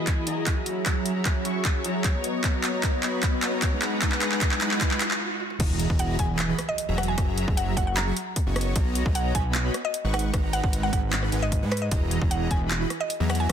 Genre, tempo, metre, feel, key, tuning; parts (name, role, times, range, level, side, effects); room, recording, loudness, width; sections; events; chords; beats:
future bass; 152 BPM; 4/4; half-time; A4 = 440 Hz
warm studio string section; sustained chords; 0.0-5.2 s; F#3 to D#5; -36 LUFS; left 2 dB; sidechain pumping, low-pass filter
big bright polysynth; riff; 0.0-13.5 s; E3 to C#6; -29 LUFS; right 1 dB; chorus, sidechain pumping, digital delay
riser and impact; sound effects; 2.2-7.2 s; -38 LUFS; right 2 dB
electronic kick drum; drums; 0.1-13.5 s; -26 LUFS; equal; overdrive
trap drum kit; drums; 0.1-13.5 s; crash cymbal, handclaps, hi-hat, rim click, toms; -29 LUFS; equal; overdrive, high-pass filter on snare, high-pass filter on hats, high-pass filter on toms, high-pass filter on cymbals
fat analog bass; bass; 5.6-13.5 s; E1 to G#2; -27 LUFS; equal; sidechain pumping
mallet-like synth pluck; melody; 6.0-13.5 s; B4 to A#5; -31 LUFS; equal; chorus, sidechain pumping, ping-pong delay
light reverb; dense, heavily limited modern master; -23 LUFS; side -8 dB against mid
0.0-5.6 A section; 5.6-13.5 B section
build-up 0.0-5.6; drum fill 0.0-5.2, 5.4; filter sweep on analog polysynth 0.0-5.6; stop 5.2-5.6; drop 5.6-13.5; impact 5.6-7.2
0.0 Emaj9#11; 0.7 F#7; 2.2 Bmaj7; 3.8 G#m7; 5.6 Emaj9#11; 7.0 F#7; 8.6 Bmaj7; 10.1 G#m7; 11.9 Emaj9#11
0.07 0.47 | 0.86 1.26 1.65 2.05 | 2.44 2.83 3.23 3.62 | 4.02 4.41 4.81 5.20 | 5.60 5.99 6.39 6.78 | 7.18 7.57 7.97 8.36 | 8.76 9.15 9.55 9.94 | 10.34 10.73 11.12 11.52 | 11.91 12.31 12.70 13.10 | 13.49